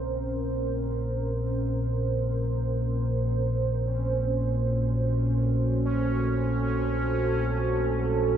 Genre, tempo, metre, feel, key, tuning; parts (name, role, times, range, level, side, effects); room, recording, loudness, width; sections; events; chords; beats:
dark ambient drone; free time; A4 = 440 Hz
deep dark ambient pad; sustained chords; 0.0-8.4 s; Db4 to C5; -30 LUFS; right 3 dB; chorus, built-in reverb
deep rumbling drone; drone; 0.0-8.4 s; Bb1 to Bb2; -26 LUFS; equal; built-in reverb
bubbling stepped-filter texture; texture; 3.4-8.4 s; Db4; -32 LUFS; right 3 dB; chorus, built-in reverb
moderate huge ambient reverb, RT60 8.2 s; -24 LUFS; side -9 dB against mid
0.0-8.4 A section
0.0 Bbm; 3.5 Gbm
free time